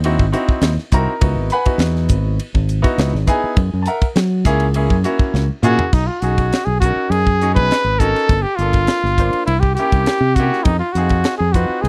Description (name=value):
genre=electric jazz fusion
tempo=102 BPM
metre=4/4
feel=straight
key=unclear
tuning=A4 = 441 Hz
part: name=clear concert grand piano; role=accompaniment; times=0.0-11.9 s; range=A#3 to B5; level=-24 LUFS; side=equal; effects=none
part: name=fingered electric bass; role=bass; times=0.0-11.9 s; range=G1 to F#3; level=-20 LUFS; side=equal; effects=none
part: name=tight funk drum kit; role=drums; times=0.0-11.9 s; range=crash cymbal, hi-hat, kick drum, ride cymbal, snare drum, toms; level=-20 LUFS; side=equal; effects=none
part: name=warm trumpet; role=melody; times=5.6-11.9 s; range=Eb4 to B4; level=-20 LUFS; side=equal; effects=none
room=small room ambience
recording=dry, close 1970s-style studio recording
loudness=-17 LUFS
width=mono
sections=0.0-5.9 A section; 5.9-11.9 B section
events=drum fill 5.3-5.9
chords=0.0 G#7b13; 1.2 C#m11; 3.6 F#7; 5.9 B69; 8.3 Gm9; 9.5 C7b9; 10.7 Fm7